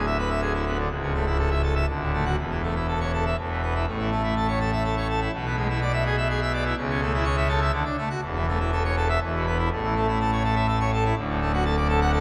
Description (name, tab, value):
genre	classical, organ toccata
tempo	123 BPM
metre	3/4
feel	straight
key	A major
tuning	A4 = 440 Hz
part	pipe organ, full organ	solo	0.0-12.2 s	C#1 to F#5	-25 LUFS	equal	none
room	wet cathedral reverb, RT60 4.4 s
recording	none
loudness	-25 LUFS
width	mono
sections	0.0-3.9 A section; 3.9-12.2 B section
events	none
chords	0.0 E7/D; 0.9 A/C#; 1.9 D; 2.4 A/E; 3.4 E5; 3.9 A; 5.3 E7/B; 6.8 A/C#; 7.7 D; 8.2 A/E; 9.2 E5; 9.7 A; 11.2 D